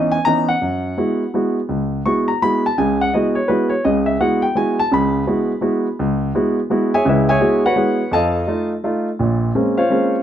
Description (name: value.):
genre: jazz.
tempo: 168 BPM.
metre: 3/4.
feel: swing 64% on 8ths.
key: F# dorian.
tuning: A4 = 437 Hz.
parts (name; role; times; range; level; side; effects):
warm grand piano; solo; 0.0-10.2 s; Bb1 to C#6; -15 LUFS; equal; none.
room: moderate large studio reverb, RT60 1.4 s.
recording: close, detailed microphones.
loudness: -15 LUFS.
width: side -10 dB against mid.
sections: 0.6-9.2 A section; 9.2-10.2 A section.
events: none.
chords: 0.0 Dbm9; 0.6 F#9sus4; 8.1 F7; 9.2 Bbm9.